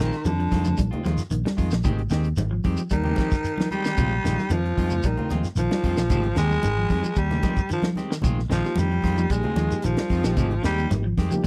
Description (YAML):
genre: afrobeat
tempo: 113 BPM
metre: 4/4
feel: straight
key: unclear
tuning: A4 = 440 Hz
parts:
  - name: raspy baritone saxophone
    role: melody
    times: 0.0-10.9 s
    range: D3 to Ab3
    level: -29 LUFS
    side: equal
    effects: slapback echo
  - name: semi-hollow electric guitar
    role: arpeggios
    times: 0.0-11.5 s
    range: C3 to G3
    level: -32 LUFS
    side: equal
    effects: none
  - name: clean electric guitar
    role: stabs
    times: 0.0-11.3 s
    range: Eb3 to G4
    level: -34 LUFS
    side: equal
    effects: none
  - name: fingered electric bass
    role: bass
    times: 0.0-11.5 s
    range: Ab1 to F2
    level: -27 LUFS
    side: equal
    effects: none
  - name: tight funk drum kit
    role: drums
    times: 0.0-11.5 s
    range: hi-hat, kick drum, snare drum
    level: -28 LUFS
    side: equal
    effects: none
  - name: shekere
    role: percussion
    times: 0.1-11.4 s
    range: none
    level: -34 LUFS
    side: equal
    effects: none
  - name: congas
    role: percussion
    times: 0.3-11.5 s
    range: none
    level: -33 LUFS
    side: equal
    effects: none
  - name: bright reed electric piano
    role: accompaniment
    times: 8.6-11.5 s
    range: F3 to G4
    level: -33 LUFS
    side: equal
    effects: fast tremolo
room: little or no reverb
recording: dry, close 1970s-style studio recording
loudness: -23 LUFS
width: mono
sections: 0.0-11.5 A section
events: baritone saxophone solo 0.0-11.5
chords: 0.0 Bb9sus4; 1.8 Abmaj7; 4.0 Bb9sus4; 6.1 Abmaj7; 8.2 Bb9sus4; 10.4 Abmaj7